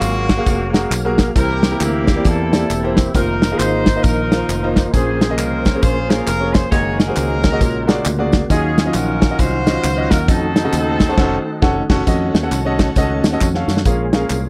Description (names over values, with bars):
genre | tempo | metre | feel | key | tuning
uptempo gospel | 134 BPM | 4/4 | swing 61% on 8ths | unclear | A4 = 440 Hz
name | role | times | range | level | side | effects
clear horn section | melody | 0.0-11.9 s | Bb3 to Db5 | -24 LUFS | equal | none
clear concert grand piano | accompaniment | 0.0-14.5 s | Bb2 to Gb5 | -24 LUFS | equal | none
tonewheel organ | sustained chords | 0.0-14.5 s | C#3 to F5 | -27 LUFS | equal | slow rotary speaker, chorus vibrato
fingered electric bass | bass | 0.0-14.5 s | E1 to Gb2 | -24 LUFS | equal | none
warm soul drum kit | drums | 0.0-14.4 s | crash cymbal, hi-hat, kick drum, snare drum | -18 LUFS | equal | none
handclaps and tambourine | percussion | 0.0-14.4 s | none | -32 LUFS | equal | none
warm studio string section | sustained chords | 12.1-13.8 s | Db5 to A5 | -35 LUFS | equal | none
room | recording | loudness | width
little or no reverb | dry, close 1970s-style studio recording | -16 LUFS | mono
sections
0.0-12.1 A section; 12.1-13.9 B section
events
band accent 11.2-12.1; drum fill 13.4-13.9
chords
0.0 Gbmaj9; 1.4 C7; 3.1 F7sus4; 4.9 Bbm9; 6.7 Gb69; 7.6 Bb7alt; 8.5 Ebm9; 10.3 F7b9b13; 13.9 Bbm7